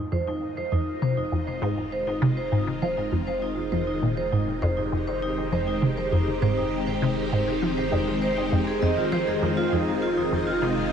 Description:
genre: ambient, sequencer-driven space music.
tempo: 100 BPM.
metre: 4/4.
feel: straight.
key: F minor.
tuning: A4 = 440 Hz.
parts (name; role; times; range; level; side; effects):
phased string machine; sustained chords; 0.0-10.9 s; Eb3 to G4; -29 LUFS; left 1 dB; ensemble chorus, phaser.
resonant blip pluck; riff; 0.0-10.8 s; F2 to F3; -26 LUFS; equal; phaser, ensemble chorus, ping-pong delay.
round analog bass; bass; 0.0-10.9 s; F1; -38 LUFS; equal; none.
bubbling stepped-filter texture; texture; 0.0-10.9 s; Eb4 to Eb5; -37 LUFS; right 1 dB; chorus, built-in reverb.
vibraphone with medium hard mallets; arpeggios; 0.1-10.8 s; Eb4 to Eb5; -28 LUFS; right 1 dB; auto-pan, low-pass filter, ping-pong delay.
room: moderate huge ambient reverb, RT60 7.6 s.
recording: none.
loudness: -23 LUFS.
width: side -8 dB against mid.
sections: 0.0-10.9 A section.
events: fade-in on string machine 0.0-10.9; fade-in on analog synth bass 0.0-10.9; fade-in on synth texture 0.0-10.9.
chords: 0.0 Fm7.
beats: 0.42 1.02 1.62 | 2.22 2.82 3.42 4.02 | 4.62 5.22 5.82 6.42 | 7.02 7.62 8.22 8.82 | 9.42 10.02 10.62.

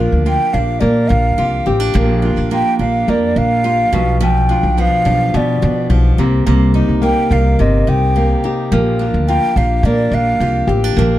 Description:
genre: pop.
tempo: 107 BPM.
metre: 4/4.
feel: straight.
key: Bb major.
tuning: A4 = 440 Hz.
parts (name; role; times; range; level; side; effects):
flamenco guitar; accompaniment; 0.0-11.2 s; B2 to Bb4; -18 LUFS; left 2 dB; none.
picked steel-string acoustic guitar; arpeggios; 0.0-11.2 s; F3 to G4; -22 LUFS; right 5 dB; digital delay.
upright bass; bass; 0.0-11.2 s; G1 to B2; -15 LUFS; equal; none.
mellow hollow concert flute; melody; 0.3-10.7 s; D5 to G5; -17 LUFS; right 1 dB; none.
room: light reverb.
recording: dark, warm production.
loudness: -12 LUFS.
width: side -14 dB against mid.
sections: 0.0-11.2 A section.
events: none.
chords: 0.0 Bb6; 3.9 G7/B; 6.2 Cm7; 8.7 Bb6.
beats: 0.27 0.83 1.40 | 1.96 2.52 3.08 3.65 | 4.21 4.77 5.33 5.90 | 6.46 7.02 7.59 8.15 | 8.71 9.28 9.84 10.40 | 10.96.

